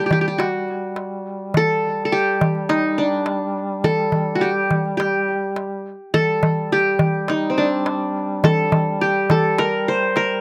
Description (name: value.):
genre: Arabic maqam ensemble.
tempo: 105 BPM.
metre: 4/4.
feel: straight.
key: G maqam nahawand.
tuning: A4 = 440 Hz.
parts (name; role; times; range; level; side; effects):
qanun; melody; 0.0-10.4 s; C4 to C5; -22 LUFS; equal; slapback echo.
mellow duduk; drone; 0.0-10.4 s; G3; -29 LUFS; equal; none.
darbuka; percussion; 0.1-10.3 s; none; -23 LUFS; equal; none.
room: light reverb.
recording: recorded outdoors, with no room sound.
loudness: -20 LUFS.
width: mono.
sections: 0.0-10.4 A section.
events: none.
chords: none.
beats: 0.40 0.97 | 1.55 2.12 2.69 3.27 | 3.84 4.42 4.99 5.57 | 6.14 6.71 7.29 7.86 | 8.43 9.01 9.58 10.15.